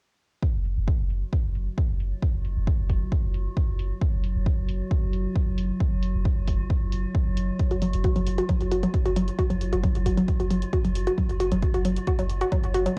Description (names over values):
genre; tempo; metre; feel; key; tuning
driving peak-time techno; 134 BPM; 4/4; straight; unclear; A4 = 440 Hz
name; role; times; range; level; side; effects
metallic inharmonic drone; drone; 1.5-13.0 s; F#3; -36 LUFS; equal; chorus, built-in reverb, phaser, sidechain pumping, cassette tape
electronic kick drum; drums; 0.4-12.6 s; none; -27 LUFS; equal; none
saturated sub bass; bass; 0.5-12.9 s; F#1; -31 LUFS; equal; overdrive, sidechain pumping, low-pass filter
electronic hi-hat; drums; 0.7-12.9 s; none; -46 LUFS; equal; sidechain pumping on hats, low-pass filter on hats, low-pass filter on room
woody wave-folded pluck; riff; 7.7-12.9 s; F#3 to F#4; -28 LUFS; equal; chorus, overdrive, sidechain pumping, cassette tape, tape echo
room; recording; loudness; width
light reverb; home recording on cassette; -25 LUFS; mono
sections
0.4-13.0 A section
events
none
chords
0.4 F#5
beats
| 0.43 0.88 1.33 1.77 | 2.22 2.67 3.12 3.57 | 4.01 4.46 4.91 5.36 | 5.80 6.25 6.70 7.15 | 7.60 8.04 8.49 8.94 | 9.39 9.83 10.28 10.73 | 11.18 11.62 12.07 12.52 | 12.97